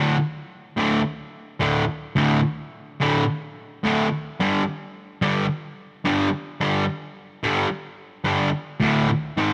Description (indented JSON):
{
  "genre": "rock",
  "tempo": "108 BPM",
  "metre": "4/4",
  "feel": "straight",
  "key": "unclear",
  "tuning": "A4 = 439 Hz",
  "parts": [
    { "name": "fuzz guitar", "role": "solo", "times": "0.0-9.5 s", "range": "D2 to G#3", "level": "-24 LUFS", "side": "equal", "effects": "distortion" }
  ],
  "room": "light reverb",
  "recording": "none",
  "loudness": "-23 LUFS",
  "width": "mono",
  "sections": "0.0-8.8 A section",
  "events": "none",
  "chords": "0.0 D5; 4.4 G5; 8.8 D5",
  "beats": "0.49 1.05 1.61 | 2.16 2.72 3.28 3.83 | 4.39 4.95 5.50 6.05 | 6.61 7.16 7.71 8.27 | 8.82 9.37"
}